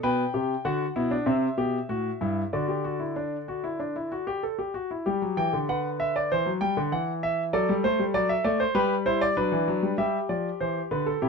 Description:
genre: classical, baroque-style 3-part fugue for grand piano.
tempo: 97 BPM.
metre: 4/4.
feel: straight.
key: G major.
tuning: A4 = 441 Hz.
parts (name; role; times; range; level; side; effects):
warm concert grand piano; solo; 0.0-11.3 s; G2 to G5; -24 LUFS; equal; none.
room: light reverb.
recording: dark, warm production.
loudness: -24 LUFS.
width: side -4 dB against mid.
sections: 0.0-5.1 A section; 5.1-10.0 B section; 10.0-11.3 A section.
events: none.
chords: 0.0 G/B; 1.3 C; 2.5 D; 5.1 G; 6.3 C; 7.5 D7/F#; 8.8 G; 10.0 G7.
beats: | 0.04 0.65 1.27 1.90 | 2.53 3.16 3.80 4.43 | 5.06 5.68 6.30 6.92 | 7.53 8.14 8.75 9.37 | 9.98 10.60 11.22.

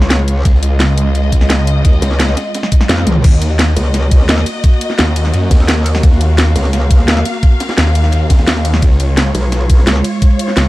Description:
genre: dark technical drum and bass.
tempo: 172 BPM.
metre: 4/4.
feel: straight.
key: Eb minor.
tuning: A4 = 438 Hz.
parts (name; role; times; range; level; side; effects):
dark symphonic string section; sustained chords; 0.0-10.7 s; Ab3 to F5; -20 LUFS; equal; sidechain pumping.
metallic wobble bass; bass; 0.0-7.2, 9.3-10.0 s; Cb2 to F2; -14 LUFS; equal; distortion, chorus.
crunchy breakbeat drum kit; drums; 0.0-10.7 s; ride cymbal, snare drum; -27 LUFS; equal; none.
drum and bass drum kit; drums; 0.0-10.6 s; crash cymbal, hi-hat, ride cymbal, snare drum, toms; -16 LUFS; equal; none.
snarling distorted saw bass; bass; 0.5-10.7 s; Db2 to Gb2; -12 LUFS; equal; distortion, overdrive.
electronic kick drum; drums; 0.5-10.3 s; none; -9 LUFS; equal; none.
room: little or no reverb.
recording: dark, warm production, faint mains hum.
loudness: -10 LUFS.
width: side -18 dB against mid.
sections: 0.0-3.2 A section; 3.2-10.7 A section.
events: drop 0.0-3.2, 3.2-10.7; band accent 2.9; drum fill 3.0.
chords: 0.0 Db; 3.2 Ebm; 8.8 Db.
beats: 0.10 | 0.45 0.80 1.15 1.50 | 1.85 2.20 2.54 2.89 | 3.24 3.59 3.94 4.29 | 4.64 4.99 5.34 5.68 | 6.03 6.38 6.73 7.08 | 7.43 7.78 8.13 8.47 | 8.82 9.17 9.52 9.87 | 10.22 10.57.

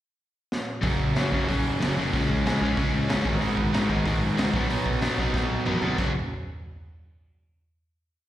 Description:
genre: punk rock.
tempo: 186 BPM.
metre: 4/4.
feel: straight.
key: F# major.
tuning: A4 = 442 Hz.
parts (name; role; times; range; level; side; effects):
raw garage drum kit; drums; 0.5-6.1 s; hi-hat, kick drum, snare drum, splash cymbal, toms; -28 LUFS; equal; none.
crunchy overdriven guitar; riff; 0.8-6.1 s; F#2 to C#4; -26 LUFS; left 3 dB; slapback echo.
distorted electric guitar; riff; 0.8-6.1 s; F#2 to D#4; -30 LUFS; right 11 dB; distortion, slapback echo.
fuzz picked electric bass; bass; 0.8-6.1 s; F#1 to G#2; -31 LUFS; right 1 dB; overdrive.
room: light reverb.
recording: live gig heard through the venue's PA, recital hall reverb.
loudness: -22 LUFS.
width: side -13 dB against mid.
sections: 0.0-0.8 pickup bar; 0.8-6.0 verse; 6.0-7.3 final chord.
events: drum fill 0.5-0.8, 5.3-6.0.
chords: 0.0 N.C.; 0.8 F#; 2.1 C#; 3.3 G#m; 4.5 B; 6.0 F#5.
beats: 0.19 0.52 | 0.84 1.16 1.49 1.81 | 2.13 2.45 2.77 3.10 | 3.42 3.74 4.06 4.38 | 4.70 5.03 5.35 5.67 | 5.99.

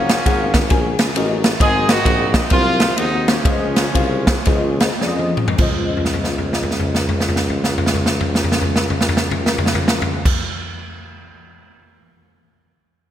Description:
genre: uptempo gospel.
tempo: 101-134 BPM.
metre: 4/4.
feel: swing 64% on 8ths.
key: Db major.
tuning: A4 = 440 Hz.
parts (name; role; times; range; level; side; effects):
warm horn section; melody; 0.0-5.0 s; F3 to Ab4; -21 LUFS; right 1 dB; none.
mellow tine electric piano; accompaniment; 0.0-10.3 s; Db2 to Ab5; -24 LUFS; left 3 dB; ensemble chorus.
mellow tuba; bass; 0.0-10.3 s; Gb1 to F2; -23 LUFS; equal; none.
swinging big-band drum kit; drums; 0.1-11.8 s; crash cymbal, kick drum, ride cymbal, snare drum, toms; -17 LUFS; equal; gated reverb.
room: light reverb, small room ambience.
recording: bright 1980s-style digital production.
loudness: -15 LUFS.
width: side -11 dB against mid.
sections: 0.0-5.6 A section; 5.6-10.4 B section.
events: slowing down 1.6-5.6; drum fill 5.0-5.6, 5.9-10.2.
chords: 0.0 Gbmaj9; 1.6 Ab9; 3.5 Dbmaj9.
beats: 0.26 0.71 1.15 | 1.60 2.05 2.51 2.97 | 3.45 3.95 4.47 5.01 | 5.59 6.19 6.78 7.38 | 7.98 8.57 9.17 9.76.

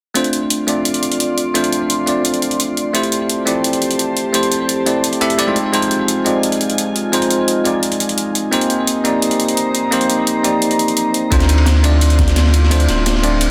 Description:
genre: liquid drum and bass.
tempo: 172 BPM.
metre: 4/4.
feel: straight.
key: D minor.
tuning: A4 = 442 Hz.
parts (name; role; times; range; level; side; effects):
bell-like tine electric piano; accompaniment; 0.1-13.5 s; G#3 to E5; -19 LUFS; equal; subtle chorus, delay.
glassy FM pad; sustained chords; 0.6-13.5 s; Eb4 to C6; -25 LUFS; equal; ensemble chorus, built-in reverb, sidechain pumping.
electronic hi-hat; drums; 0.2-13.5 s; none; -22 LUFS; equal; none.
warm sub bass; bass; 11.3-13.5 s; D1 to D2; -15 LUFS; equal; none.
crunchy breakbeat drum kit; drums; 11.3-13.5 s; ride cymbal, snare drum; -24 LUFS; equal; high-pass filter on cymbals, high-pass filter on snare, high-pass filter on room.
electronic kick drum; drums; 11.3-12.3 s; none; -19 LUFS; equal; none.
room: moderate concert hall reverb, RT60 2.3 s.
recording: none.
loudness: -16 LUFS.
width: mono.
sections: 0.2-13.5 A section.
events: none.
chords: 0.2 Dm7; 2.9 Am7; 5.6 Fm7; 8.5 Cm7; 11.3 Dm7.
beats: | 0.15 0.50 0.85 1.20 | 1.55 1.90 2.25 2.60 | 2.94 3.29 3.64 3.99 | 4.34 4.69 5.04 5.39 | 5.74 6.08 6.43 6.78 | 7.13 7.48 7.83 8.18 | 8.53 8.88 9.22 9.57 | 9.92 10.27 10.62 10.97 | 11.32 11.67 12.02 12.36 | 12.71 13.06 13.41.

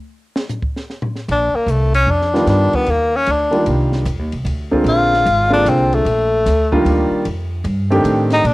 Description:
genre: jazz, small-group swing and bop.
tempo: 151 BPM.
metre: 3/4.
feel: swing 66% on 8ths.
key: Bb major.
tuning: A4 = 439 Hz.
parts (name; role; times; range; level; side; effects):
compact cocktail drum kit; drums; 0.4-8.5 s; hi-hat, kick drum, ride cymbal, snare drum, toms; -28 LUFS; equal; cassette tape.
breathy tenor saxophone; melody; 1.3-8.5 s; A3 to F4; -15 LUFS; left 2 dB; plate reverb.
upright bass; bass; 1.3-8.5 s; Ab1 to Bb2; -18 LUFS; equal; transformer saturation.
warm baby grand piano; accompaniment; 2.3-8.4 s; D3 to G4; -17 LUFS; right 1 dB; cassette tape, plate reverb.
room: light reverb.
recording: home recording on cassette.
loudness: -14 LUFS.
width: side -19 dB against mid.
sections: 0.0-1.3 A section; 1.3-8.5 A section.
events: drum solo 0.0-1.3; tenor saxophone solo 1.3-8.5.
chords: 0.0 N.C.; 1.3 Bbadd9; 2.5 G7b13; 3.7 Cm11; 4.9 Bb7; 6.1 Ebmaj9; 7.3 F13.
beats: | 0.08 0.48 0.88 | 1.28 1.68 2.08 | 2.47 2.87 3.27 | 3.67 4.07 4.47 | 4.87 5.26 5.66 | 6.06 6.46 6.86 | 7.25 7.65 8.05 | 8.45.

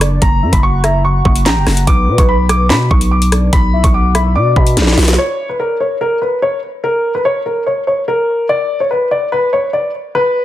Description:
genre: hip hop, drill.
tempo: 145 BPM.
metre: 4/4.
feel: half-time.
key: B harmonic minor.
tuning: A4 = 440 Hz.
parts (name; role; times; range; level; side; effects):
warm velvety synth lead; second line; 0.0-4.7 s; B4 to G5; -22 LUFS; left 2 dB; chorus, tremolo, ping-pong delay.
growling 808-style bass; bass; 0.0-5.2 s; F#1 to B2; -13 LUFS; equal; none.
drill drum kit; drums; 0.0-5.2 s; handclaps, hi-hat, kick drum, rim click, snare drum; -13 LUFS; equal; none.
dark concert grand piano; melody; 0.2-10.4 s; A#4 to D6; -15 LUFS; left 1 dB; ping-pong delay.
room: light reverb.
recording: dense, heavily limited modern master.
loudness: -11 LUFS.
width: side -13 dB against mid.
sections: 0.0-5.2 A section; 5.2-10.4 B section.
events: drum fill 4.8-5.2.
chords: 0.0 F#; 1.9 Bm; 5.2 N.C..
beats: | 0.22 0.63 1.04 1.46 | 1.87 2.29 2.70 3.11 | 3.53 3.94 4.36 4.77 | 5.18 5.60 6.01 6.42 | 6.84 7.25 7.67 8.08 | 8.49 8.91 9.32 9.73 | 10.15.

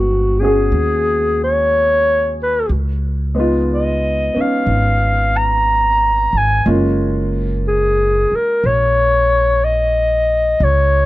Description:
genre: jazz ballad.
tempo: 61 BPM.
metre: 4/4.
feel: swing 68% on 8ths.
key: F# major.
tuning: A4 = 440 Hz.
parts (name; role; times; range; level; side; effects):
dark clarinet; melody; 0.0-11.1 s; F#4 to A#5; -15 LUFS; left 1 dB; none.
clear upright piano; accompaniment; 0.0-10.6 s; G#3 to G#4; -21 LUFS; right 1 dB; none.
upright bass; bass; 0.0-11.1 s; F#1 to D#2; -18 LUFS; equal; none.
room: small room ambience.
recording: dry, close 1970s-style studio recording.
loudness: -13 LUFS.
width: side -16 dB against mid.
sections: 0.0-11.1 A section.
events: none.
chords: 0.0 G#m7; 2.7 C#9; 6.6 F#maj9.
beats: 0.72 1.71 | 2.70 3.69 4.67 5.66 | 6.65 7.64 8.62 9.61 | 10.60.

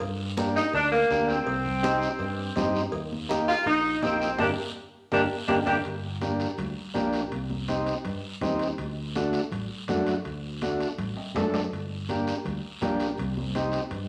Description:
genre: latin, cumbia.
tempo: 164 BPM.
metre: 4/4.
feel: straight.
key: G minor, G harmonic minor from 5.9 s.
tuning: A4 = 439 Hz.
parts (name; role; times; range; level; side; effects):
sustaining fretless electric bass; bass; 0.0-14.1 s; G1 to G2; -37 LUFS; equal; none.
cowbell and timbales; percussion; 0.0-14.1 s; none; -40 LUFS; equal; none.
guiro; percussion; 0.0-14.1 s; none; -44 LUFS; equal; none.
combo organ; accompaniment; 0.4-13.8 s; A3 to A4; -32 LUFS; equal; none.
congas; percussion; 0.4-14.1 s; none; -38 LUFS; equal; none.
clear saxophone section; melody; 0.6-5.8 s; Bb3 to G4; -27 LUFS; equal; none.
room: wet large studio reverb, RT60 1.0 s.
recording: none.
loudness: -28 LUFS.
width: mono.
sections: 0.0-5.9 A section; 5.9-14.1 B section.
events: band accent 4.4-5.9; drum fill 5.3-5.9, 11.2-11.7.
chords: 0.0 Gm; 1.5 Cm; 2.9 Eb; 4.4 Gm; 7.3 Cm; 8.8 D; 11.7 Gm; 13.2 Cm.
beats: | 0.01 0.38 0.74 1.11 | 1.47 1.84 2.20 2.57 | 2.94 3.30 3.67 4.03 | 4.40 4.76 5.13 5.49 | 5.86 6.23 6.59 6.96 | 7.33 7.69 8.06 8.43 | 8.79 9.16 9.52 9.89 | 10.26 10.62 10.99 11.36 | 11.72 12.09 12.46 12.82 | 13.19 13.56 13.92.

